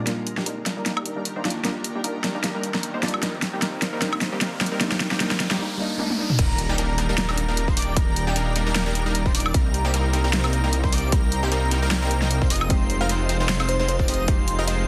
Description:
future bass; 152 BPM; 4/4; swing 55% on 16ths, half-time; Eb major; A4 = 440 Hz
soft round pluck; accompaniment; 0.0-6.4, 12.7-14.9 s; G3 to G4; -34 LUFS; equal; chorus, sidechain pumping, digital delay
shimmering ambient pad; sustained chords; 0.0-14.9 s; Eb3 to G5; -39 LUFS; equal
supersaw stab; riff; 0.0-14.9 s; G3 to Eb5; -30 LUFS; equal; sidechain pumping, low-pass filter, digital delay
big-room dance drum kit; drums; 0.1-14.8 s; crash cymbal, hi-hat, snare drum, toms, woodblock; -28 LUFS; equal; overdrive, studio ambience
riser and impact; sound effects; 1.9-8.0 s; -36 LUFS; equal
airy dreamy lead; arpeggios; 6.4-14.9 s; G5 to Eb6; -34 LUFS; equal; chorus, sidechain pumping, digital delay
detuned saw bass; bass; 6.4-14.9 s; Eb1 to C2; -26 LUFS; equal; chorus, sidechain pumping
electronic kick drum; drums; 6.4-14.4 s; -24 LUFS; equal; studio ambience
bell-like FM electric piano; melody; 13.0-14.7 s; C5 to F5; -31 LUFS; equal; chorus, sidechain pumping, digital delay
light reverb; dense, heavily limited modern master; -23 LUFS; mono
0.1-6.4 A section; 6.4-14.9 B section
build-up 0.1-6.4; drum fill 0.1-5.6, 6.0-6.4; filter sweep on supersaw synth 0.1-6.4; drop 6.4-14.9; impact 6.4-8.0
0.1 Ebmaj7; 3.2 Cm7; 6.2 Ebmaj7; 9.5 Cm7; 12.5 Fm7
| 0.07 0.47 0.86 1.25 | 1.65 2.04 2.44 2.83 | 3.23 3.62 4.02 4.41 | 4.81 5.20 5.60 5.99 | 6.39 6.78 7.18 7.57 | 7.96 8.36 8.76 9.15 | 9.54 9.94 10.33 10.73 | 11.12 11.52 11.91 12.31 | 12.70 13.10 13.49 13.89 | 14.28 14.68

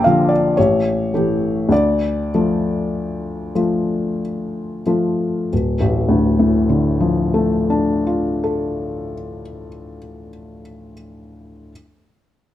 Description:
classical, romantic nocturne for solo piano; 44-57 BPM; 3/4; rubato; D minor; A4 = 441 Hz
felt-muted upright piano; solo; 0.0-11.7 s; D1 to C6; -16 LUFS; left 1 dB
light reverb; close, detailed microphones; -16 LUFS; side -12 dB against mid
0.0-5.5 A section; 5.5-9.5 B section
slowing down 0.0-5.5
0.0 Bb; 0.6 A7; 1.7 Dm
0.57 | 1.71 2.92 4.19 | 5.51 6.81 8.14

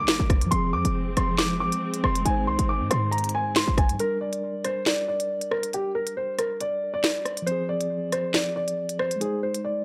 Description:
hip hop, drill; 138 BPM; 4/4; half-time; G phrygian; A4 = 440 Hz
dark grand piano; melody; 0.0-9.8 s; G4 to D6; -29 LUFS; equal; low-pass filter
mellow tine electric piano; accompaniment; 0.0-9.8 s; F3 to C5; -35 LUFS; equal; low-pass filter
dark studio string section; sustained chords; 0.0-4.0 s; D3 to C4; -36 LUFS; equal
short 808-style bass; bass; 0.0-4.0 s; F1 to Ab2; -29 LUFS; equal
drill drum kit; drums; 0.1-9.6 s; handclaps, hi-hat, kick drum, rim click, snare drum; -28 LUFS; equal
little or no reverb; dry, gritty hardware recording; -25 LUFS; mono
0.0-4.0 A section; 4.0-9.8 B section
break 4.0-9.8
0.0 Gm; 0.5 Fm; 2.3 Ab; 4.0 Gm; 7.5 Fm; 9.2 Ab
0.08 | 0.52 0.95 1.39 1.82 | 2.25 2.69 3.12 3.56 | 3.99 4.43 4.86 5.30 | 5.73 6.17 6.60 7.04 | 7.47 7.91 8.34 8.78 | 9.21 9.65

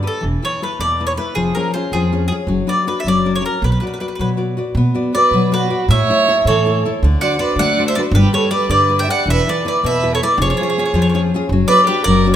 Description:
italian folk, Italian serenade; 106 BPM (dotted quarters); 6/8; straight; B minor; A4 = 439 Hz
mandolin; melody; 0.0-12.4 s; G#4 to G5; -18 LUFS; equal
nylon-string guitar; accompaniment; 0.0-12.4 s; B2 to D5; -19 LUFS; left 3 dB
upright bass; bass; 0.0-12.4 s; E1 to D3; -19 LUFS; right 1 dB
warm violin; second line; 5.1-12.3 s; F#4 to E5; -19 LUFS; right 6 dB
moderate recital hall reverb, RT60 1.8 s; -14 LUFS; side -10 dB against mid
0.0-4.8 A section; 4.8-12.4 A section
0.2 Esus4; 1.4 C#/E#; 2.5 Bm/F#; 3.1 F#; 3.6 Bm; 5.9 A; 7.0 D7; 8.1 Gadd9; 9.3 Esus4; 10.4 C#/E#; 11.5 Bm/F#
| 0.23 0.81 | 1.37 1.94 | 2.50 3.06 | 3.63 4.20 | 4.76 5.33 | 5.90 6.46 | 7.02 7.58 | 8.13 8.70 | 9.27 9.83 | 10.39 10.95 | 11.51 12.06

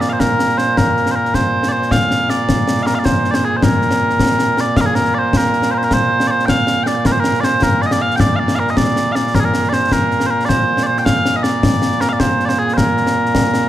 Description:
scottish traditional, Scottish pipe music; 105 BPM (dotted quarters); 6/8; straight; Bb major; A4 = 441 Hz
mellow small bagpipes; melody; 0.0-13.7 s; Bb2 to G5; -15 LUFS; right 1 dB
concert snare drum and concert bass drum; drums; 0.0-13.6 s; -17 LUFS; left 1 dB
moderate recital hall reverb, RT60 1.5 s; -13 LUFS; side -12 dB against mid
0.0-4.8 A section; 4.8-13.7 A section
| 0.20 0.77 | 1.34 1.91 | 2.48 3.06 | 3.63 4.20 | 4.77 5.34 | 5.91 6.49 | 7.06 7.63 | 8.20 8.77 | 9.34 9.91 | 10.48 11.06 | 11.63 12.20 | 12.77 13.34

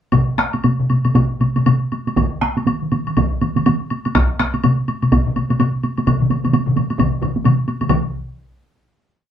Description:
japanese traditional, taiko drum ensemble; 117-140 BPM; 4/4; swing 60% on 16ths
solo taiko drums; percussion; 0.1-8.1 s; -19 LUFS; right 2 dB
taiko ensemble; percussion; 0.1-8.3 s; -18 LUFS; left 2 dB
taiko ensemble; percussion; 0.1-8.1 s; -23 LUFS; equal
woodblock; percussion; 0.1-8.1 s; -27 LUFS; left 2 dB
taiko ensemble; percussion; 2.2-8.3 s; -22 LUFS; right 2 dB
wet small room reverb, RT60 0.5 s; band playing live in one room; -15 LUFS; side -9 dB against mid
0.1-7.9 A section; 7.9-9.3 final hit
speeding up 0.1-9.3
| 0.12 0.64 1.15 1.66 | 2.16 2.67 3.17 3.66 | 4.15 4.64 5.12 5.60 | 6.07 6.53 7.00 7.45 | 7.90

